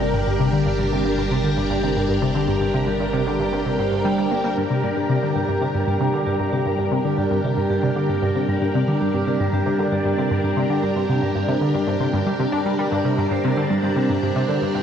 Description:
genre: ambient, sequencer-driven space music.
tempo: 115 BPM.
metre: 4/4.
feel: straight.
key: G minor.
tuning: A4 = 440 Hz.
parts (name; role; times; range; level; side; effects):
string machine, full ensemble; sustained chords; 0.0-14.8 s; D4 to Bb4; -24 LUFS; left 1 dB; phaser, ensemble chorus.
vibraphone with medium hard mallets; arpeggios; 0.0-14.8 s; G3 to G5; -25 LUFS; right 3 dB; auto-pan, tape echo.
tight sequenced synth; riff; 0.0-14.8 s; G2 to D4; -22 LUFS; equal; chorus, phaser, tape echo.
round analog bass; bass; 0.0-4.5 s; G1; -30 LUFS; equal; none.
room: wet huge ambient reverb, RT60 7.9 s.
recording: worn, warbling old tape, cassette tape, warbly pitch drift, nothing above 10.8 kHz.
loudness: -18 LUFS.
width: side -8 dB against mid.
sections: 0.0-4.6 A section; 4.6-14.8 A section.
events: none.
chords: 0.0 Gm.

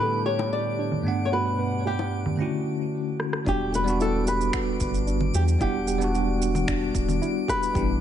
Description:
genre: sunset chillout.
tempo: 112 BPM.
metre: 4/4.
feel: straight.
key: E dorian.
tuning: A4 = 441 Hz.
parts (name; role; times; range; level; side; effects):
flamenco guitar; melody; 0.0-8.0 s; G4 to D5; -28 LUFS; equal; digital delay.
bell-like tine electric piano; accompaniment; 0.0-8.0 s; G2 to F#5; -27 LUFS; moving between left 5 dB and right 5 dB; medium stereo tremolo, auto-pan, vintage 12-bit sampler grit, tape echo.
airy breathy pad; sustained chords; 0.0-2.4 s; B2 to F#5; -35 LUFS; equal; chorus.
soft round pluck; arpeggios; 0.0-7.9 s; D4 to B4; -35 LUFS; right 3 dB; chorus, tape echo.
drifting glass-harmonics texture; texture; 0.0-8.0 s; D4 to D7; -37 LUFS; left 2 dB; chorus, built-in reverb.
bongos; percussion; 0.4-2.1 s; none; -34 LUFS; left 6 dB; none.
electronic congas, rim click, shaker and finger snaps; drums; 0.9-7.9 s; none; -32 LUFS; right 3 dB; overdrive, low-pass filter on perc, studio reverb, low-pass filter on snare.
round analog bass; bass; 3.5-8.0 s; D1 to E2; -26 LUFS; equal; none.
electronic kick drum; drums; 3.5-7.9 s; none; -31 LUFS; equal; overdrive, studio reverb.
room: light reverb.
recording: nothing above 10.7 kHz.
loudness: -22 LUFS.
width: side -10 dB against mid.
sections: 0.0-3.5 A section; 3.5-8.0 B section.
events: drum fill 3.2.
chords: 0.0 A7sus4; 1.1 Gmaj7; 2.4 Dmaj7; 3.5 Em9.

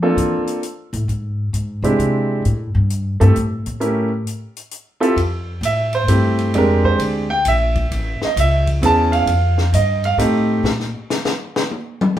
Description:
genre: jazz piano trio.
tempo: 132 BPM.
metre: 3/4.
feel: swing 66% on 8ths.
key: F major from 5.2 s.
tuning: A4 = 440 Hz.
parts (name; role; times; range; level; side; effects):
clear grand piano; melody; 0.0-10.6 s; G#3 to A5; -17 LUFS; right 2 dB; none.
upright bass; bass; 0.0-10.9 s; A1 to F3; -19 LUFS; left 1 dB; none.
compact cocktail drum kit; drums; 0.2-12.2 s; hi-hat, kick drum, ride cymbal, snare drum, toms; -25 LUFS; left 3 dB; none.
room: wet large studio reverb, RT60 0.8 s.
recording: band playing live in one room.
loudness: -16 LUFS.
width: side -11 dB against mid.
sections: 0.0-5.2 A section; 5.2-12.2 A section.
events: upright bass solo 0.0-5.2; grand piano solo 5.2-12.2; drum solo 10.6-12.2.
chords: 0.0 Bbmaj9; 1.1 E7alt; 2.4 A7(no3); 3.8 A7b9; 4.7 C; 5.2 Fmaj7; 6.5 Bb13; 7.9 Amaj7; 9.3 F7; 10.6 N.C..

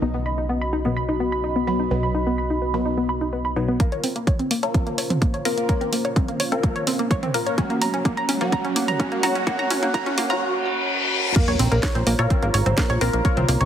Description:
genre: melodic techno.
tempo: 127 BPM.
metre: 4/4.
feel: straight.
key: Bb minor.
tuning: A4 = 442 Hz.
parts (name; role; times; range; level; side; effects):
dark analog pad; sustained chords; 0.0-13.7 s; Bb3 to B5; -28 LUFS; right 2 dB; chorus, phaser, sidechain pumping.
analog pluck; arpeggios; 0.0-13.7 s; Bb3 to Db6; -25 LUFS; equal; chorus, cassette tape, sidechain pumping, tape echo.
filtered dub chord stab; stabs; 0.0-13.7 s; B2 to Bb4; -28 LUFS; left 2 dB; phaser, sidechain pumping, tape echo.
plucky analog bass; bass; 0.0-3.8, 11.5-13.7 s; Ab1 to Bb2; -24 LUFS; equal; sidechain pumping.
analog drone; drone; 0.4-3.8 s; Db3 to Db4; -44 LUFS; left 2 dB; none.
electronic kick drum; drums; 3.8-13.3 s; none; -21 LUFS; equal; none.
house drum kit; drums; 3.8-13.7 s; crash cymbal, hi-hat, snare drum, toms; -27 LUFS; equal; sidechain pumping on hats, low-pass filter on hats, sidechain pumping on toms, low-pass filter on toms, sidechain pumping on cymbals, low-pass filter on cymbals, low-pass filter on snare, low-pass filter on room.
riser, reverse cymbal and sub drop; sound effects; 6.0-13.2 s; none; -29 LUFS; left 1 dB; none.
room: light reverb.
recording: heavily compressed radio sound, multiband compression, high-pass filter.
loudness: -19 LUFS.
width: side -9 dB against mid.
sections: 0.0-3.8 A section; 3.8-11.4 B section; 11.4-13.7 C section.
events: filter sweep on synth arpeggio sound 0.0-3.8; build-up 3.8-11.4; drum fill 3.8-10.4; filter sweep 3.8-11.4; reverse cymbal 10.4-11.4; drop 11.4-13.7; impact 11.4-13.2.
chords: 0.0 B; 3.8 Bbmadd9; 7.6 Gb; 11.4 Bbmadd9.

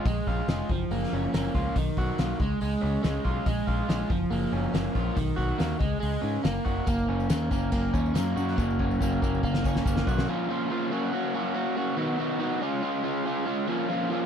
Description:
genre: indie rock.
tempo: 141 BPM.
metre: 4/4.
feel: straight.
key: unclear.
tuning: A4 = 440 Hz.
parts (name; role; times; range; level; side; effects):
crunchy overdriven guitar; riff; 0.0-14.3 s; D#3 to F#4; -27 LUFS; right 1 dB; none.
growling picked electric bass; bass; 0.1-10.3 s; E#1 to G#2; -30 LUFS; equal; overdrive.
loose indie drum kit; drums; 0.1-10.3 s; crash cymbal, hi-hat, kick drum, snare drum; -30 LUFS; left 1 dB; none.
tambourine; percussion; 6.9-10.2 s; none; -50 LUFS; left 18 dB; none.
room: little or no reverb.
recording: none.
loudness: -25 LUFS.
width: side -8 dB against mid.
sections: 0.0-6.9 A section; 6.9-10.3 B section; 10.3-14.3 C section.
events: drum fill 8.6-10.3.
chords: 0.1 A#5; 0.7 F#maj7; 1.8 Bmaj7; 2.4 C#; 3.5 A#5; 4.1 F#maj7; 5.2 Bmaj7; 5.8 C#5; 6.4 F#; 10.3 A#m; 10.9 F#; 12.0 B; 12.6 C#; 13.7 A#m.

